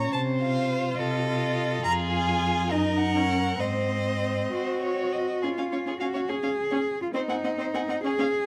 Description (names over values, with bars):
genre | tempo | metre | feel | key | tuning
quick classical-period movement for string quartet | 64-71 BPM (dotted quarters) | 6/8 | rubato | Db major | A4 = 439 Hz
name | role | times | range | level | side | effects
warm violin | melody | 0.0-8.2 s | Db5 to Bb5 | -33 LUFS | equal | none
rich violin | second line | 0.0-8.3 s | Ab4 to Gb5 | -34 LUFS | equal | none
rich viola | accompaniment | 0.0-8.2 s | C4 to F4 | -33 LUFS | equal | none
warm cello | bass | 0.0-8.5 s | F2 to Ab4 | -31 LUFS | equal | none
room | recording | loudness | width
moderate recital hall reverb, RT60 1.5 s | none | -27 LUFS | mono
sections
0.0-5.4 A section; 5.4-8.5 B section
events
none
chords
0.1 F7/C; 1.8 Fm; 2.7 Ebm/Gb; 3.6 Ab; 5.4 Db; 7.2 Ab7/C (rootless)